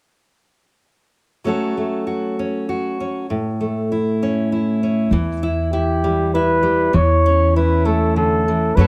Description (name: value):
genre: acoustic folk-pop ballad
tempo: 98 BPM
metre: 3/4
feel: straight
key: unclear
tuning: A4 = 439 Hz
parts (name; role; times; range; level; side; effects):
- fingerpicked steel-string acoustic guitar; accompaniment; 1.4-8.9 s; A2 to A4; -22 LUFS; equal; none
- upright bass; bass; 5.1-8.9 s; E2 to F#2; -21 LUFS; equal; none
- breathy flugelhorn; melody; 5.7-8.9 s; G4 to C#5; -20 LUFS; equal; none
room: light reverb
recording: none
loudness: -19 LUFS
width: mono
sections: 1.4-5.1 A section; 5.1-8.9 B section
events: none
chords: 1.4 F#m; 3.3 A; 5.1 Em; 6.9 A/E